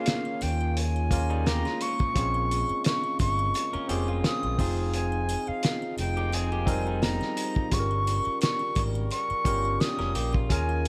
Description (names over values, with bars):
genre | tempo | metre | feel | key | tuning
lush 1970s-style soul | 86 BPM | 4/4 | swing 54% on 16ths | unclear | A4 = 440 Hz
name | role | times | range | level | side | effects
reedy silver concert flute | melody | 0.0-10.9 s | F5 to Eb6 | -33 LUFS | equal | none
barky tine electric piano | accompaniment | 0.0-10.9 s | G3 to Bb4 | -35 LUFS | equal | none
warm French horn section | sustained chords | 0.0-10.9 s | Db3 to Bb4 | -42 LUFS | equal | none
cloth-damped thuddy drum kit | drums | 0.1-10.9 s | hi-hat, kick drum, snare drum | -31 LUFS | equal | none
triangle | percussion | 0.1-10.9 s | none | -49 LUFS | equal | none
overdriven fingered electric bass | bass | 0.4-10.9 s | F1 to Eb2 | -31 LUFS | equal | none
electric guitar through a small old amp | riff | 1.3-10.7 s | G3 to Bb4 | -41 LUFS | equal | none
room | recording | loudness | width
studio ambience | none | -27 LUFS | mono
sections
0.0-10.9 A section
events
none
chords
0.0 Eb9sus4; 2.2 Bbm7; 4.6 Fm7; 7.7 Gm7b5